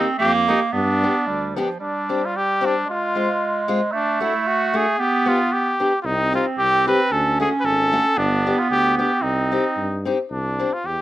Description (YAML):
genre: alpine folk, alpine dance band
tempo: 113 BPM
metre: 2/4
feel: straight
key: C harmonic minor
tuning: A4 = 440 Hz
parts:
  - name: bright trumpet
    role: melody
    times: 0.0-11.0 s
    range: D4 to B4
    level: -21 LUFS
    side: equal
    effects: plate reverb
  - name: bright clarinet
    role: second line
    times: 0.0-10.0 s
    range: F3 to Db4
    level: -22 LUFS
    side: right 3 dB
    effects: plate reverb
  - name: picked steel-string acoustic guitar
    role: accompaniment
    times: 0.0-10.7 s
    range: Ab3 to G4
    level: -24 LUFS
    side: left 3 dB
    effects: plate reverb
  - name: mellow tuba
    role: bass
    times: 0.2-1.6, 6.0-11.0 s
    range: G1 to G2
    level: -26 LUFS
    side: equal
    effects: none
room: moderate studio ambience, RT60 0.5 s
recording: rough home demo mix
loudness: -18 LUFS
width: side -14 dB against mid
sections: 0.0-1.8 A section; 1.8-10.3 B section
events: none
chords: 0.0 Eb; 0.7 G; 1.8 Csus2; 2.9 Fm; 3.9 D; 5.0 G; 6.1 Cm; 7.1 D; 8.2 G; 9.2 Cm; 10.3 Csus2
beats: 0.20 | 0.74 1.27 | 1.81 2.34 | 2.87 3.40 | 3.93 4.46 | 5.00 5.53 | 6.06 6.59 | 7.13 7.66 | 8.18 8.71 | 9.24 9.77 | 10.30 10.84